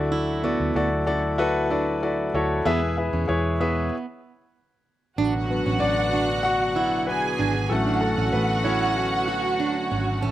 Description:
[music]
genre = pop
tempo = 95 BPM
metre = 4/4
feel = straight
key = unclear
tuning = A4 = 440 Hz
[part]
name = clear concert grand piano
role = accompaniment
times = 0.0-10.3 s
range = D3 to F#5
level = -24 LUFS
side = left 2 dB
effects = none
[part]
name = pipe organ, foundations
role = sustained chords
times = 0.0-10.3 s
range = B2 to A4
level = -33 LUFS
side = equal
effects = none
[part]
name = vintage muted fingered electric bass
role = bass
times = 0.0-10.3 s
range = G#1 to E2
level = -28 LUFS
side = equal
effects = none
[part]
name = fingerpicked plugged-in steel-string acoustic guitar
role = riff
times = 0.1-10.3 s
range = B3 to F#4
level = -29 LUFS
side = right 6 dB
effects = none
[part]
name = warm studio violin section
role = second line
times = 5.2-10.3 s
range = F#4 to A5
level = -26 LUFS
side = right 2 dB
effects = none
[sound]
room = little or no reverb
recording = recorded outdoors, with no room sound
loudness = -21 LUFS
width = side -13 dB against mid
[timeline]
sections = 0.0-5.2 A section; 5.2-10.3 B section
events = stop 3.9-5.2; grand piano solo 5.2-10.3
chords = 0.0 Dadd9; 2.7 E; 5.2 Dmaj7/A

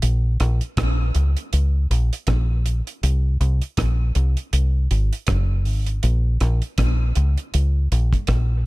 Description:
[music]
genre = dub reggae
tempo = 80 BPM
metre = 4/4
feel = swing 57% on 16ths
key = Bb minor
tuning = A4 = 440 Hz
[part]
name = deep dub fingered electric bass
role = bass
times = 0.0-8.7 s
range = Gb1 to Db2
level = -18 LUFS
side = equal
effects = none
[part]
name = deep reggae drum kit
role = drums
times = 0.0-8.5 s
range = hi-hat, kick drum, rim click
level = -26 LUFS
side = right 1 dB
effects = none
[sound]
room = little or no reverb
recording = none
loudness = -18 LUFS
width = side -21 dB against mid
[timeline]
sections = 0.0-8.7 A section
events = none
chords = none

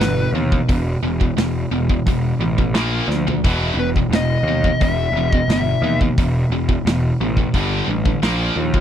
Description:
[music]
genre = heavy metal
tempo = 88 BPM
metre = 4/4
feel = straight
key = E harmonic minor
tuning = A4 = 440 Hz
[part]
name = dark smooth lead guitar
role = melody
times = 0.0-6.0 s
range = B4 to E5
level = -23 LUFS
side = left 2 dB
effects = overdrive, tape echo
[part]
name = tight distorted guitar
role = riff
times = 0.0-8.8 s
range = E2 to A#3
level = -20 LUFS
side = equal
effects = distortion
[part]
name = fuzz picked electric bass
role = bass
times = 0.0-8.8 s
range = E1 to D#2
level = -21 LUFS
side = equal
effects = overdrive
[part]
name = big rock drum kit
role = drums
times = 0.0-8.8 s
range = hi-hat, kick drum, snare drum, toms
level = -19 LUFS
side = equal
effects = none
[sound]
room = little or no reverb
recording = dry, close 1970s-style studio recording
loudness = -16 LUFS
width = side -10 dB against mid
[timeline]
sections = 0.0-8.8 A section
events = drum fill 3.1-3.4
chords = 0.0 E5; 2.7 A#5; 3.4 E5; 7.5 G5; 8.2 A#5

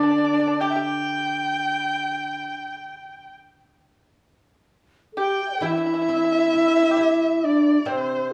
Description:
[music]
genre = chinese traditional, Chinese chamber ensemble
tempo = 66 BPM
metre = 4/4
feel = straight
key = unclear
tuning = A4 = 440 Hz
[part]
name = dark erhu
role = melody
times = 0.0-8.3 s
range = C5 to G5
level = -27 LUFS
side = equal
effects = none
[part]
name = pipa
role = second line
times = 0.0-8.3 s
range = C4 to G4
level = -32 LUFS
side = equal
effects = none
[part]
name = steel-string zither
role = accompaniment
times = 0.0-8.3 s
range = C3 to G4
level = -30 LUFS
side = equal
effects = none
[part]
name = breathy bright low xiao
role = second line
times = 5.1-8.3 s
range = D4 to G5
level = -23 LUFS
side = equal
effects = none
[sound]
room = moderate recital hall reverb, RT60 1.5 s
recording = small room ambience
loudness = -22 LUFS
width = mono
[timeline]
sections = 0.0-4.3 A section; 4.3-8.3 B section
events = none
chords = none

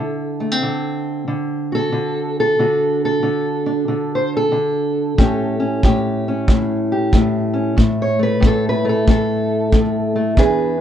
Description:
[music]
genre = acoustic country blues, solo or duo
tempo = 92 BPM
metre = 4/4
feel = swing 64% on 8ths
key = A mixolydian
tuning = A4 = 438 Hz
[part]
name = fingerpicked steel-string acoustic guitar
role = melody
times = 0.0-10.8 s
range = E2 to C#5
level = -17 LUFS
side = equal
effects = none
[part]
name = kick drum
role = drums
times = 5.2-10.6 s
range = none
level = -15 LUFS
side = right 1 dB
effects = none
[sound]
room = light reverb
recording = dark, warm production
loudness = -16 LUFS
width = side -10 dB against mid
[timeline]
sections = 0.0-10.8 A section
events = none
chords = 0.0 D7; 5.2 A7

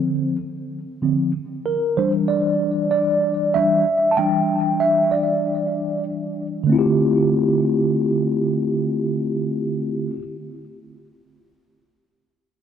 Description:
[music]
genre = hip hop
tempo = 95 BPM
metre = 4/4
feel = swing 62% on 16ths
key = D minor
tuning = A4 = 440 Hz
[part]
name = mellow tine electric piano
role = solo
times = 0.0-10.2 s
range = D3 to A5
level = -18 LUFS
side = equal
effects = medium stereo tremolo, digital delay
[sound]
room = moderate echo chamber reverb, RT60 1.9 s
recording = dark, warm production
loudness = -18 LUFS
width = side -8 dB against mid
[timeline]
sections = 0.0-6.7 A section; 6.7-9.2 B section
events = tine electric piano solo 0.0-6.7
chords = 0.0 Dm7; 1.7 Em7; 6.7 Dm11

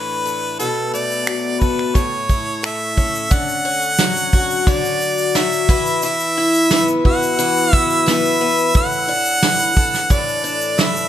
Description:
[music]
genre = acoustic pop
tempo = 88 BPM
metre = 4/4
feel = straight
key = D major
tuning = A4 = 439 Hz
[part]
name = bright harmonica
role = melody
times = 0.0-11.1 s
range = A4 to F#5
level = -18 LUFS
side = right 1 dB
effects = plate reverb, tape echo
[part]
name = picked twelve-string acoustic guitar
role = accompaniment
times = 0.0-11.1 s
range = A2 to A4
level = -20 LUFS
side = left 3 dB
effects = none
[part]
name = soft brush drum kit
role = drums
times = 0.3-11.1 s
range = finger snaps, kick drum, shaker, snare drum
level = -18 LUFS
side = right 1 dB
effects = none
[sound]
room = moderate studio reverb, RT60 0.8 s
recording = none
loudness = -15 LUFS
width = side -11 dB against mid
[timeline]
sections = 0.0-3.3 A section; 3.3-11.1 B section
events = none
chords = 0.0 Asus4; 0.6 Bm7; 2.0 A; 3.3 Dmaj7; 5.7 Esus2; 8.7 Asus4

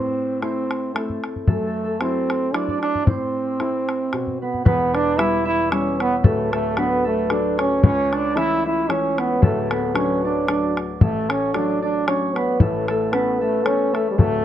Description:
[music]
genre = celtic folk, Celtic waltz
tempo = 113 BPM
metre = 3/4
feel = swing 54% on 8ths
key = A dorian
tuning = A4 = 440 Hz
[part]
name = warm trombone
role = melody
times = 0.0-14.4 s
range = G3 to E4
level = -22 LUFS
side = right 3 dB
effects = plate reverb
[part]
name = concert harp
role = second line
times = 0.0-14.4 s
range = A4 to E5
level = -26 LUFS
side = left 1 dB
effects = none
[part]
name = clear upright piano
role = accompaniment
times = 0.0-14.4 s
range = D1 to E4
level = -26 LUFS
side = left 4 dB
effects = none
[part]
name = bodhran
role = percussion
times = 0.4-14.3 s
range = none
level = -18 LUFS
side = left 2 dB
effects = none
[sound]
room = moderate studio reverb, RT60 0.6 s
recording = dark, warm production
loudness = -18 LUFS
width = side -11 dB against mid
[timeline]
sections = 0.0-4.7 A section; 4.7-14.4 B section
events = none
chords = 0.0 Am; 1.5 F#m7b5; 3.1 Am; 4.1 N.C.; 4.7 Em; 6.2 D; 7.8 A/C#; 9.4 D; 12.6 Aadd9

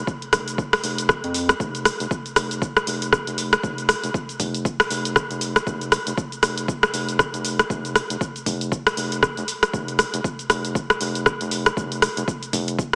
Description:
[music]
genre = afro house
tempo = 118 BPM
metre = 4/4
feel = swing 58% on 16ths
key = unclear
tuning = A4 = 440 Hz
[part]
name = round analog bass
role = bass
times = 0.0-12.8 s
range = F1 to F2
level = -28 LUFS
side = equal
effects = sidechain pumping
[part]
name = deep house drum kit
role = drums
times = 0.1-12.9 s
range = hi-hat, rim click, shaker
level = -20 LUFS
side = equal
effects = small room reverb
[part]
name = electronic kick drum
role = drums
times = 0.1-12.9 s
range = none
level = -28 LUFS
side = equal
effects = small room reverb
[sound]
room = moderate concert hall reverb, RT60 2.1 s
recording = heavily compressed radio sound, small speaker sound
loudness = -20 LUFS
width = side -27 dB against mid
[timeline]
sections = 0.0-1.6 A section; 1.6-12.9 B section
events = drop 1.6-12.9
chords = none

